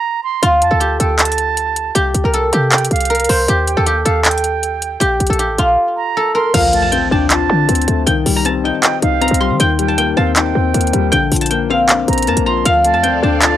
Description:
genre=hip hop, trap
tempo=157 BPM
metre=4/4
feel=half-time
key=D phrygian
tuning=A4 = 440 Hz
part: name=concert flute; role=second line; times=0.0-13.6 s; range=F5 to C6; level=-20 LUFS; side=right 9 dB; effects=cassette tape, tape echo
part: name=guzheng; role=melody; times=0.4-13.6 s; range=F4 to C6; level=-16 LUFS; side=equal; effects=cassette tape
part: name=short 808-style bass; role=bass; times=0.4-13.6 s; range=A1 to Eb3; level=-18 LUFS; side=equal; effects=none
part: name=trap drum kit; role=drums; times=0.4-13.5 s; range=crash cymbal, handclaps, hi-hat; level=-17 LUFS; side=equal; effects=cassette tape
part: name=dark baby grand piano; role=accompaniment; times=6.5-13.6 s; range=D3 to Eb5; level=-17 LUFS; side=left 10 dB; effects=cassette tape
part: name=impact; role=sound effects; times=6.5-8.1 s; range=none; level=-25 LUFS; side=equal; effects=none
part: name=dark symphonic string section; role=sustained chords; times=12.7-13.6 s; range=C4 to F5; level=-22 LUFS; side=left 1 dB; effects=cassette tape
room=light reverb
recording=home recording on cassette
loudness=-12 LUFS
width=side -12 dB against mid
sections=0.0-6.5 A section; 6.5-13.6 B section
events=break 0.0-0.4; impact 6.5-8.1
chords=0.4 Dm; 2.0 C5; 3.5 Eb; 5.0 Bb5; 6.5 Dm7; 8.1 Cm; 9.6 Eb6; 11.1 Bbadd9; 12.7 Dm7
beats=0.04 | 0.42 0.81 1.19 1.57 | 1.95 2.34 2.72 3.10 | 3.48 3.87 4.25 4.63 | 5.01 5.39 5.78 6.16 | 6.54 6.92 7.30 7.69 | 8.07 8.45 8.83 9.21 | 9.60 9.98 10.36 10.74 | 11.13 11.51 11.89 12.27 | 12.65 13.04 13.42

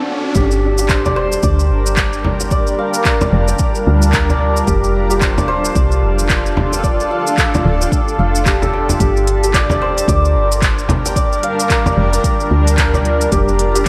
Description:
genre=organic downtempo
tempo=111 BPM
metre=4/4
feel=swing 60% on 16ths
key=G minor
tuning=A4 = 439 Hz
part: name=santur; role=arpeggios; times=0.0-13.9 s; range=G4 to G5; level=-21 LUFS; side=equal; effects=digital delay
part: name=granular cloud pad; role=sustained chords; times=0.3-13.9 s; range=G3 to Bb4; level=-23 LUFS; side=equal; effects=built-in reverb, sidechain pumping
part: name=afro-pop drum kit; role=drums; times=0.3-13.9 s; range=handclaps, hi-hat, shaker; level=-23 LUFS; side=equal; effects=none
part: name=woody FM bass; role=bass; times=0.4-13.9 s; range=D1 to D2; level=-19 LUFS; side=equal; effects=sidechain pumping
part: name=electronic kick drum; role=drums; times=0.4-13.9 s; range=none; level=-20 LUFS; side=equal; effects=none
part: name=frame drum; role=percussion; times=1.1-13.0 s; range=none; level=-22 LUFS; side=equal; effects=none
room=moderate concert hall reverb, RT60 2.0 s, digital ambience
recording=big arena sound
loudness=-15 LUFS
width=mono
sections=0.4-13.9 A section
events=stop 0.0-0.4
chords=0.4 Gm7; 4.7 F6; 9.0 Gm7; 13.3 F6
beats=| 0.35 0.89 1.43 1.97 | 2.51 3.06 3.60 4.14 | 4.68 5.22 5.76 6.30 | 6.84 7.38 7.92 8.46 | 9.00 9.54 10.08 10.62 | 11.16 11.70 12.24 12.78 | 13.32 13.87

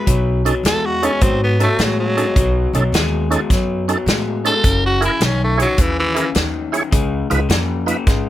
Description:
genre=electric blues shuffle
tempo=105 BPM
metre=4/4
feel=swing 67% on 8ths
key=unclear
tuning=A4 = 441 Hz
part: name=growling tenor saxophone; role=melody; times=0.0-6.3 s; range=E3 to B4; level=-19 LUFS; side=equal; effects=none
part: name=electric guitar through a small old amp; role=riff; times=0.0-8.3 s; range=F#2 to A#3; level=-22 LUFS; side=left 5 dB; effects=none
part: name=upright bass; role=bass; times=0.1-8.3 s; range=F#1 to A2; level=-20 LUFS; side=equal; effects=none
part: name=natural country drum kit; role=drums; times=0.1-8.2 s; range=hi-hat, kick drum, snare drum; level=-18 LUFS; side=equal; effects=none
part: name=tonewheel organ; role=accompaniment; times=0.5-8.0 s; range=C#4 to C#5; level=-20 LUFS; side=right 4 dB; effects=slow rotary speaker, overdrive, chorus vibrato
room=little or no reverb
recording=none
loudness=-14 LUFS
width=side -13 dB against mid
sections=0.0-8.3 A section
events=tenor saxophone solo 0.0-8.3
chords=0.0 B9; 4.6 F#9; 6.9 C#9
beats=| 0.07 0.64 1.21 1.78 | 2.36 2.93 3.50 4.07 | 4.64 5.21 5.79 6.36 | 6.93 7.50 8.07

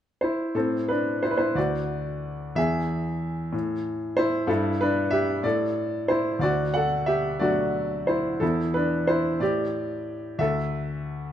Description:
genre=classical, lyrical solo piano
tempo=61 BPM (dotted quarters)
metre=6/8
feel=rubato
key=A dorian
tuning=A4 = 440 Hz
part: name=clear grand piano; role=solo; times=0.2-11.3 s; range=D2 to F#5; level=-23 LUFS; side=equal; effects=none
room=moderate recital hall reverb, RT60 1.7 s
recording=minimal, uncompressed stereo recording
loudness=-23 LUFS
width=side -10 dB against mid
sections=0.6-11.3 A section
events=none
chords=0.0 N.C.; 0.6 Am; 1.6 D; 2.6 E; 3.5 A5; 4.5 Em/G; 5.4 A5; 6.4 D; 8.4 Cmaj13/E; 9.4 A7sus4; 10.4 Dsus2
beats=| 0.56 1.56 | 2.57 3.54 | 4.49 5.45 | 6.41 7.40 | 8.42 9.41 | 10.39

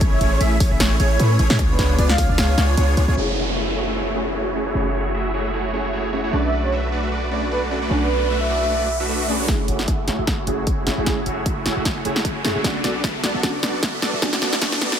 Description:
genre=future bass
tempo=152 BPM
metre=4/4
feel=swing 55% on 16ths, half-time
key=F# minor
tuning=A4 = 441 Hz
part: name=airy dreamy lead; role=arpeggios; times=0.0-3.2 s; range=C#5 to E5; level=-28 LUFS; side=equal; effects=chorus, sidechain pumping
part: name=supersaw chords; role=riff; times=0.0-15.0 s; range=A3 to E5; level=-24 LUFS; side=right 1 dB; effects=lush chorus, sidechain pumping, low-pass filter, digital delay
part: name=warm 808-style bass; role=bass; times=0.0-15.0 s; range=F#1 to A2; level=-23 LUFS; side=equal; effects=sidechain pumping
part: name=big-room dance drum kit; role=drums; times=0.0-3.3, 9.5-15.0 s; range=crash cymbal, hi-hat, snare drum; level=-23 LUFS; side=equal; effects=low-pass filter on snare, low-pass filter on hats, low-pass filter on cymbals
part: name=electronic kick drum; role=drums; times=0.0-2.3, 9.5-14.7 s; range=none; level=-23 LUFS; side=equal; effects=none
part: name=breathy flute-like synth lead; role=melody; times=0.1-2.6, 6.4-9.0 s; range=B4 to E#5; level=-25 LUFS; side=right 2 dB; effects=lush chorus, sidechain pumping, digital delay
part: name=soft round pluck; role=accompaniment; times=3.1-15.0 s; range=A3 to G#4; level=-28 LUFS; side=right 1 dB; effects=ensemble chorus, sidechain pumping, digital delay
part: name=ethereal airy pad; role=sustained chords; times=4.3-15.0 s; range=A3 to E6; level=-34 LUFS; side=right 2 dB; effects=ensemble chorus, built-in reverb, sidechain pumping
part: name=downlifter and riser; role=sound effects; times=3.2-15.0 s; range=none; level=-29 LUFS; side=equal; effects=none
room=light reverb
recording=high-pass filter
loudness=-18 LUFS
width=side -8 dB against mid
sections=0.0-3.2 A section; 3.2-9.5 B section; 9.5-15.0 C section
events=drop 0.0-3.2; kick drops out 2.8-3.2; filter sweep on supersaw synth 3.2-9.5, 9.5-15.0; filter sweep on ambient pad 3.2-9.5; riser 7.1-9.5, 9.5-15.0; build-up 9.5-15.0; drum fill 9.5-15.0; filter sweep 9.5-15.0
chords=0.0 Amaj7; 1.6 C#7b9; 3.2 F#m9; 6.3 Bm7; 9.5 F#m9; 12.6 Bm7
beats=| 0.01 0.41 0.80 1.20 | 1.59 1.99 2.38 2.77 | 3.17 3.56 3.96 4.35 | 4.75 5.14 5.54 5.93 | 6.33 6.72 7.12 7.51 | 7.91 8.30 8.70 9.09 | 9.49 9.88 10.28 10.67 | 11.06 11.46 11.85 12.25 | 12.64 13.04 13.43 13.83 | 14.22 14.62

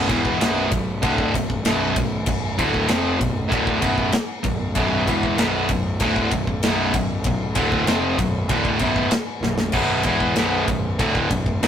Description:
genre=heavy metal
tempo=96 BPM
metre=4/4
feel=straight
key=B minor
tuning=A4 = 440 Hz
part: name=distorted electric guitar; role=riff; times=0.0-11.7 s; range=B1 to E#3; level=-21 LUFS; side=equal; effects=overdrive
part: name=fuzz picked electric bass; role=bass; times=0.0-11.7 s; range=B0 to E#1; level=-26 LUFS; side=equal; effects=overdrive
part: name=modern studio drum kit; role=drums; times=0.1-11.7 s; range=crash cymbal, kick drum, ride cymbal, snare drum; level=-23 LUFS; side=left 1 dB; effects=none
room=moderate stone room reverb, RT60 1.4 s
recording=rough rehearsal-room recording, tube saturation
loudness=-18 LUFS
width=side -9 dB against mid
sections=0.0-11.7 A section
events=drum fill 9.4-9.7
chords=0.0 Bm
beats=0.40 1.03 1.65 | 2.27 2.89 3.51 4.13 | 4.75 5.38 6.00 6.62 | 7.25 7.87 8.49 9.12 | 9.74 10.36 10.99 11.61

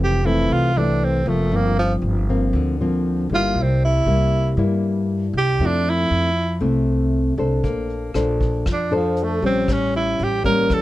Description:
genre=bossa nova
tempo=118 BPM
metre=4/4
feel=straight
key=F major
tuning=A4 = 441 Hz
part: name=breathy tenor saxophone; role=melody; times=0.0-10.8 s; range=F3 to Bb4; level=-21 LUFS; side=right 2 dB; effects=none
part: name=nylon-string guitar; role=accompaniment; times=0.0-10.8 s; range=F2 to C5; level=-21 LUFS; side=left 2 dB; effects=none
part: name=upright bass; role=bass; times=0.0-10.8 s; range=F1 to G2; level=-22 LUFS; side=equal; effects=none
part: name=vintage brush drum kit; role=drums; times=7.6-10.8 s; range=hi-hat, kick drum, rim click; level=-25 LUFS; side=equal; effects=none
room=light reverb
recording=dark, warm production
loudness=-17 LUFS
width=side -16 dB against mid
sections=0.0-10.8 A section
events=tenor saxophone solo 0.0-10.8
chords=0.0 Fmaj7; 1.5 Gm7; 3.6 C7; 5.6 Fmaj7; 7.6 Bbmaj9; 9.7 A7b9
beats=0.49 1.00 | 1.51 2.02 2.53 3.04 | 3.56 4.07 4.58 5.09 | 5.60 6.11 6.62 7.13 | 7.64 8.15 8.66 9.17 | 9.68 10.19 10.70

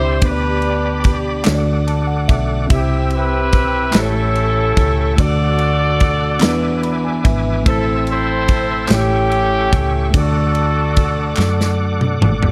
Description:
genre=slow gospel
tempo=48 BPM (dotted quarters)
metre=6/8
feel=straight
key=unclear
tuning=A4 = 440 Hz
part: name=clear horn section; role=melody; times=0.0-11.8 s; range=C4 to D5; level=-22 LUFS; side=equal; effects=none
part: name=mellow tine electric piano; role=accompaniment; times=0.0-12.5 s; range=A2 to B5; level=-24 LUFS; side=equal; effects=none
part: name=bright tonewheel organ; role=sustained chords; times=0.0-12.5 s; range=C4 to E6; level=-28 LUFS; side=equal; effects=overdrive, chorus vibrato, fast rotary speaker
part: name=hollow-body short-scale fingered electric bass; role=bass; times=0.0-12.5 s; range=G#1 to F#2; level=-22 LUFS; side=equal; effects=none
part: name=modern studio drum kit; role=drums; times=0.2-12.5 s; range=kick drum, ride cymbal, snare drum, toms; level=-20 LUFS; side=equal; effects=none
part: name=group handclap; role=percussion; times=1.4-11.8 s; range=none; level=-29 LUFS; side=equal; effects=none
room=studio ambience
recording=none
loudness=-16 LUFS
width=mono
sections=0.0-12.5 A section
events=tine electric piano fill 1.5-2.7, 6.4-7.7; drum fill 11.4-12.5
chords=0.2 G/D; 1.5 D; 2.7 C; 3.9 A7; 5.2 D; 6.4 E7; 7.7 Am; 8.9 A7; 10.1 D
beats=| 0.22 1.46 | 2.70 3.94 | 5.18 6.42 | 7.66 8.90 | 10.14 11.38

